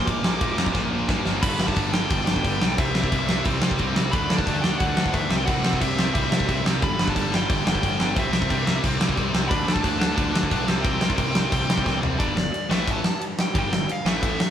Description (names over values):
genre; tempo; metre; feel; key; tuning
punk rock; 178 BPM; 4/4; straight; unclear; A4 = 442 Hz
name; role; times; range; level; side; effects
nasal lead guitar with a parked wah; melody; 0.0-14.5 s; D5 to D6; -29 LUFS; equal; overdrive
distorted electric guitar; riff; 0.0-14.4 s; G2 to D4; -26 LUFS; equal; overdrive
fuzz picked electric bass; bass; 0.0-14.4 s; G1 to G2; -28 LUFS; equal; overdrive
big rock drum kit; drums; 0.1-14.5 s; crash cymbal, kick drum, ride cymbal, snare drum, toms; -23 LUFS; equal; none
room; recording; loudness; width
light reverb; band playing live in one room; -20 LUFS; side -9 dB against mid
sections
0.0-1.4 A section; 1.4-12.2 B section; 12.2-14.5 C section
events
drum fill 0.8-1.4, 11.9-12.2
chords
0.0 Bb; 1.4 G5; 2.8 C; 4.1 D; 5.3 C; 6.8 G5; 8.2 C; 9.5 D5; 10.7 C5; 12.2 G5; 12.7 A5; 13.5 G5